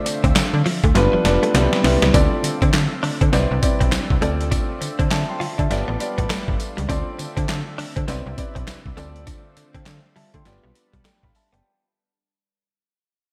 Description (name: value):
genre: R&B, new jack swing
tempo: 101 BPM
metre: 4/4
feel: swing 61% on 16ths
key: D dorian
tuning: A4 = 440 Hz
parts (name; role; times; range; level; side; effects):
- direct-recorded clean electric guitar; melody; 0.0-1.5 s; D5; -36 LUFS; equal; none
- dark baby grand piano; accompaniment; 0.0-11.8 s; G3 to C6; -26 LUFS; equal; none
- lush unison pad; sustained chords; 0.0-11.6 s; C3 to E5; -34 LUFS; equal; chorus
- direct-recorded clean electric guitar; riff; 0.1-11.6 s; F3 to F4; -31 LUFS; equal; ensemble chorus
- boom bap sampler-style drum kit; drums; 0.1-11.6 s; handclaps, hi-hat, kick drum, snare drum, tambourine; -24 LUFS; equal; gated reverb
- slap-like FM bass; bass; 0.2-11.6 s; F1 to D3; -25 LUFS; equal; none
room: moderate lush hall reverb, RT60 1.6 s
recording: bright 1980s-style digital production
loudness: -20 LUFS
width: mono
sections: 0.0-2.1 A section; 2.1-11.6 B section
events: drum fill 1.0-2.1; fade-out 2.1-11.6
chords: 0.0 Dm7; 1.0 G7; 1.5 Cmaj7; 2.1 Dm7; 3.3 Cmaj9; 4.2 Dm7; 5.7 G7; 6.9 Dm7; 8.1 Cmaj9; 9.0 Dm7; 10.5 G7